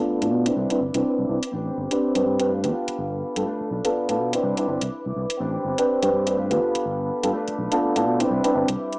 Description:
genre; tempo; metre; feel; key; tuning
filtered disco house; 124 BPM; 4/4; swing 57% on 16ths; unclear; A4 = 438 Hz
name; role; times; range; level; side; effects
clear grand piano; accompaniment; 0.0-8.7 s; B3 to B4; -22 LUFS; equal; phaser, low-pass filter
clear studio violin section; sustained chords; 0.0-9.0 s; C4 to D6; -31 LUFS; equal; vintage 12-bit sampler grit, low-pass filter
electric guitar with an envelope filter; riff; 0.0-9.0 s; G3 to B4; -32 LUFS; equal; low-pass filter
fingered electric bass; bass; 0.2-8.7 s; G1 to B2; -27 LUFS; equal; low-pass filter
electronic hi-hat; drums; 0.2-9.0 s; none; -32 LUFS; equal; overdrive
room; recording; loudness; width
light reverb, studio reverb; dry, gritty hardware recording, small speaker sound; -21 LUFS; side -26 dB against mid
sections
0.0-9.0 A section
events
filter sweep 0.0-9.0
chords
0.0 Bm7b5; 0.6 Cmaj9; 1.5 Am11; 2.5 G9; 3.5 Bm7b5; 4.4 Cmaj9; 5.4 Am11; 6.4 G9; 7.3 Bm7b5; 8.3 Cmaj9

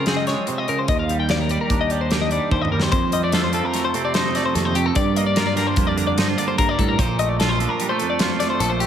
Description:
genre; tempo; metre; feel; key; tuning
math rock and midwest emo; 148 BPM; 5/4; straight; unclear; A4 = 440 Hz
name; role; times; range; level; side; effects
twangy electric guitar; accompaniment; 0.0-8.9 s; Eb2 to G4; -23 LUFS; right 7 dB; analog chorus, slapback echo
twelve-string electric guitar; arpeggios; 0.0-8.9 s; G4 to G5; -23 LUFS; left 6 dB; spring reverb
overdriven picked electric bass; bass; 0.0-8.9 s; Bb1 to Db3; -24 LUFS; equal; none
modern studio drum kit; drums; 0.1-8.9 s; hi-hat, kick drum, snare drum, toms; -24 LUFS; equal; none
room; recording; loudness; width
moderate lush hall reverb, RT60 1.7 s, small room ambience; big arena sound; -18 LUFS; side -9 dB against mid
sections
0.0-2.9 A section; 2.9-8.9 B section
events
drum fill 2.5-2.9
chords
0.0 Dbmaj7; 0.9 Ebmaj7; 2.9 F7; 5.0 Gm7; 7.0 Bbmaj9

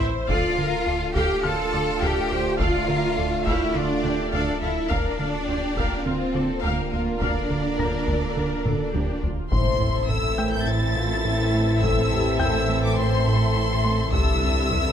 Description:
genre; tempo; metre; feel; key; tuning
cinematic, hybrid orchestral and electronic film score; 104 BPM; 4/4; straight; A phrygian; A4 = 441 Hz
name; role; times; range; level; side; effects
rich symphonic violin section; second line; 0.0-14.9 s; F4 to E5; -31 LUFS; left 3 dB; none
warm symphonic viola section; accompaniment; 0.0-14.9 s; C4 to F5; -33 LUFS; equal; none
mellow French horn section; sustained chords; 0.0-14.9 s; C4 to C5; -31 LUFS; left 3 dB; none
mellow trombone section; sustained chords; 0.0-14.9 s; D3 to D4; -32 LUFS; right 5 dB; none
rubbery square bass; riff; 0.0-14.9 s; C2 to A3; -30 LUFS; right 1 dB; none
warm sub bass; bass; 0.0-14.9 s; D1 to C2; -32 LUFS; left 1 dB; none
warm symphonic double bass section; bass; 0.0-14.9 s; A1 to D2; -29 LUFS; right 2 dB; none
taiko ensemble; drums; 0.0-14.9 s; none; -29 LUFS; left 1 dB; none
clear baby grand piano; texture; 0.0-14.9 s; G5 to Bb6; -36 LUFS; left 2 dB; ping-pong delay
warm studio violin section; melody; 0.3-14.9 s; Bb4 to A6; -30 LUFS; left 3 dB; none
rich symphonic cello section; bass; 0.3-14.9 s; A2 to A4; -28 LUFS; right 1 dB; none
impact; sound effects; 9.5-11.8 s; none; -34 LUFS; left 1 dB; none
room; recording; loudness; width
moderate concert hall reverb, RT60 2.0 s; none; -20 LUFS; side -9 dB against mid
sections
0.0-9.5 A section; 9.5-14.9 B section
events
drum fill 0.0, 8.7-9.5; impact 9.5-11.8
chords
0.3 Dm; 4.9 Bb/D; 9.5 Am; 14.1 Cadd9

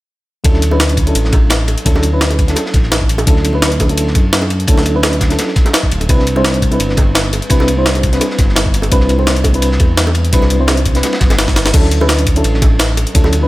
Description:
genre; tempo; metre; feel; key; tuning
liquid drum and bass; 170 BPM; 4/4; swing 53% on 16ths; D major; A4 = 442 Hz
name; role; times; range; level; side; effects
mellow FM electric piano; accompaniment; 0.4-13.5 s; F#3 to C5; -17 LUFS; equal; chorus, tremolo, tape echo
smooth synth bass; bass; 0.4-13.5 s; D1 to F#2; -15 LUFS; equal; none
breakbeat sampler-style drum kit; drums; 0.4-13.4 s; crash cymbal, hi-hat, snare drum; -17 LUFS; equal; none
electronic kick drum; drums; 0.4-13.2 s; none; -12 LUFS; equal; none
bongos; percussion; 0.4-13.3 s; none; -25 LUFS; right 1 dB; none
crunchy breakbeat drum kit; drums; 0.5-13.4 s; ride cymbal, snare drum; -24 LUFS; equal; high-pass filter on cymbals, high-pass filter on snare, high-pass filter on room
room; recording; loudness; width
small room ambience; none; -10 LUFS; side -18 dB against mid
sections
0.4-13.5 A section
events
drum fill 11.5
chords
0.4 Dmaj9; 6.1 Cmaj9; 11.7 Dmaj9

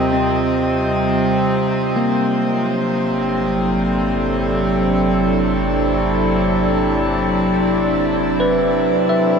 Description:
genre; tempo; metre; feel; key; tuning
ambient; 65 BPM; 4/4; straight; unclear; A4 = 440 Hz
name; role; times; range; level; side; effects
warbly tape-like pad; sustained chords; 0.0-9.4 s; F#3 to Eb5; -18 LUFS; right 2 dB; chorus, built-in reverb
bell-like tine electric piano; arpeggios; 0.0-9.4 s; Bb3 to E5; -23 LUFS; equal; ping-pong delay
deep rumbling drone; bass; 0.0-9.4 s; G1 to Eb2; -29 LUFS; equal; built-in reverb
hand-pumped harmonium; drone; 0.0-9.4 s; C3; -20 LUFS; left 2 dB; none
room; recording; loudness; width
wet shimmer reverb, RT60 6.9 s; none; -15 LUFS; side -6 dB against mid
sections
0.0-9.4 A section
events
fade-in on ambient pad 0.0-9.4; fade-in on tine electric piano 0.0-9.4; fade-in on synth drone 0.0-9.4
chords
0.0 Ebsus2; 2.2 G

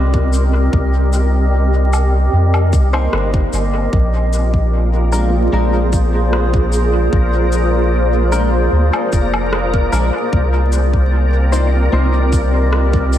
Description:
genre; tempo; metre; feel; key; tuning
ambient dub; 75 BPM; 4/4; straight; C minor; A4 = 440 Hz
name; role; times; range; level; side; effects
granular cloud pad; sustained chords; 0.0-13.2 s; Bb3 to Eb5; -18 LUFS; equal; built-in reverb
soft dub sub bass; bass; 0.0-13.2 s; F1 to F2; -15 LUFS; equal; none
electronic kick drum; drums; 0.1-13.1 s; none; -16 LUFS; equal; none
electronic shaker, woodblock and rim click; drums; 0.3-13.2 s; none; -27 LUFS; left 1 dB; dub echo
direct-recorded clean electric guitar; stabs; 2.9-12.2 s; Ab3 to C5; -26 LUFS; left 1 dB; analog chorus, dub echo
backwards swelling texture; texture; 4.8-13.2 s; Bb3 to Bb4; -26 LUFS; equal; built-in reverb, ensemble chorus
room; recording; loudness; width
moderate church reverb, RT60 2.9 s; dreamy mix soaked in reverb, vinyl crackle; -12 LUFS; side -11 dB against mid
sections
0.0-13.2 A section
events
none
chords
0.0 Cm7; 3.9 Bb7; 10.3 Cm7

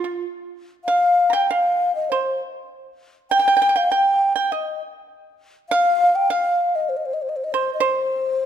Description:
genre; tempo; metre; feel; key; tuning
chinese traditional, Chinese chamber ensemble; 99 BPM; 4/4; rubato; C yu mode; A4 = 442 Hz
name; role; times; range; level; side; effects
breathy low xiao; melody; 0.0-8.5 s; F4 to G5; -18 LUFS; left 1 dB; none
pipa; second line; 0.0-8.5 s; F4 to Bb5; -24 LUFS; right 7 dB; none
room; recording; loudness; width
moderate scoring stage reverb, RT60 2.0 s; none; -17 LUFS; side -9 dB against mid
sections
0.0-8.5 A section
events
none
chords
none

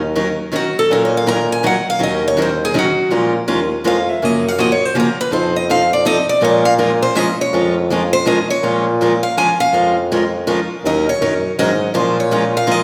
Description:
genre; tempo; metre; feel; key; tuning
acoustic string swing (jazz manouche); 163 BPM; 3/4; swing 63% on 8ths; Bb minor; A4 = 442 Hz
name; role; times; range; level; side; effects
mellow bassoon; bass; 0.0-12.8 s; Eb2 to Bb2; -22 LUFS; equal; none
picked steel-string acoustic guitar; accompaniment; 0.2-12.8 s; Db3 to Bb4; -20 LUFS; equal; none
picked steel-string acoustic guitar; melody; 0.6-12.8 s; Gb4 to Bb5; -19 LUFS; equal; none
room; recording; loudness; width
wet scoring stage reverb, RT60 1.6 s; recorded in a church or concert hall; -16 LUFS; mono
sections
0.0-8.6 A section; 8.6-12.8 A section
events
steel-string acoustic guitar solo 0.0-12.8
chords
0.0 Ebm7; 3.1 Bbm7; 4.2 Gbmaj7; 5.3 F7; 6.4 Bbm7; 10.8 Ebm7; 12.0 Bbm7

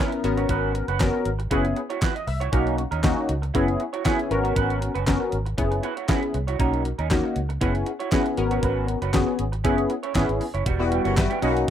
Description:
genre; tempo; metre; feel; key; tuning
early-eighties boogie funk; 118 BPM; 4/4; straight; unclear; A4 = 443 Hz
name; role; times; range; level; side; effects
funky polysynth comp; accompaniment; 0.0-11.7 s; G3 to E5; -25 LUFS; left 3 dB; chorus
electric guitar through a small old amp; riff; 0.0-11.7 s; G3 to C#5; -30 LUFS; right 8 dB; analog chorus
crisp 8-bit digital drum machine; drums; 0.1-11.7 s; handclaps, hi-hat, kick drum, snare drum; -25 LUFS; equal; none
vintage muted fingered electric bass; bass; 0.2-11.6 s; E1 to D#2; -27 LUFS; equal; none
warm horn section; second line; 10.8-11.6 s; F#3 to C#5; -30 LUFS; left 2 dB; none
room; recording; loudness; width
little or no reverb; rough home demo mix; -21 LUFS; side -10 dB against mid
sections
0.0-10.7 A section; 10.7-11.7 B section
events
none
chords
0.2 G#m11; 1.5 F#7sus4; 2.5 Bmaj9; 3.5 F#7sus4; 4.3 G#m11; 5.6 F#7sus4; 6.6 Bmaj9; 7.6 F#7sus4; 8.4 G#m11; 9.6 F#7sus4; 10.7 Emadd9

